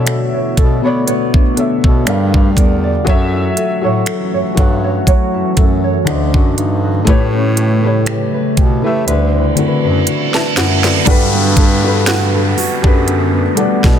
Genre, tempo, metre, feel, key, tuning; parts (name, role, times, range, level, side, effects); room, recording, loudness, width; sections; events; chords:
contemporary R&B; 60 BPM; 4/4; swing 54% on 16ths; A4 = 441 Hz
felt-muted upright piano; accompaniment; 0.0-14.0 s; B2 to A5; -18 LUFS; left 3 dB
deep dark ambient pad; sustained chords; 0.0-14.0 s; C#3 to F#5; -21 LUFS; equal; chorus, built-in reverb, sidechain pumping
nylon-string guitar; arpeggios; 0.0-14.0 s; D3 to D5; -20 LUFS; right 2 dB; ping-pong delay
warm bass clarinet; bass; 0.0-14.0 s; D2 to B3; -17 LUFS; equal
trap drum kit; drums; 0.1-14.0 s; finger snaps, hi-hat, kick drum, snare drum; -13 LUFS; equal; soft clipping on snare
reverse cymbal and downlifter; sound effects; 9.6-14.0 s; -20 LUFS; right 3 dB
glassy wavetable pluck; texture; 12.1-14.0 s; F#5; -28 LUFS; right 5 dB
studio ambience; dense, heavily limited modern master; -11 LUFS; side -9 dB against mid
0.0-11.1 A section; 11.1-14.0 B section
drum fill 9.1-11.1; reverse cymbal 9.6-11.1
0.0 Bm9; 2.1 Gm7; 3.1 F#m7; 6.1 D7b9; 7.1 A9; 9.1 D13; 11.1 Gmaj9